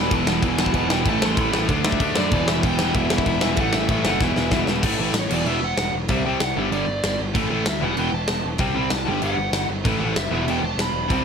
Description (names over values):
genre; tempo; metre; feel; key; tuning
punk rock; 191 BPM; 4/4; straight; E minor; A4 = 440 Hz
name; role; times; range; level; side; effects
smooth overdriven lead guitar; melody; 0.0-11.2 s; C#5 to C6; -27 LUFS; equal; none
overdriven electric guitar; riff; 0.0-11.2 s; E2 to D4; -26 LUFS; left 13 dB; none
overdriven electric guitar; riff; 0.0-11.2 s; E2 to D4; -25 LUFS; right 10 dB; none
fuzz picked electric bass; bass; 0.0-11.2 s; E1 to F#2; -27 LUFS; equal; overdrive
big rock drum kit; drums; 0.1-11.2 s; crash cymbal, kick drum, snare drum; -24 LUFS; equal; none
room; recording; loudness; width
little or no reverb; none; -19 LUFS; side -6 dB against mid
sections
0.0-4.8 A section; 4.8-11.2 B section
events
drum fill 4.2-4.8; half time 4.8-11.2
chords
0.0 E5; 1.1 A5; 1.7 D; 2.3 Em; 3.6 A5; 4.2 E5; 4.8 A5; 5.3 E5; 6.1 C5; 6.6 G5; 7.3 A5; 7.8 E5; 8.6 C5; 9.1 G5; 9.9 A5; 10.3 E5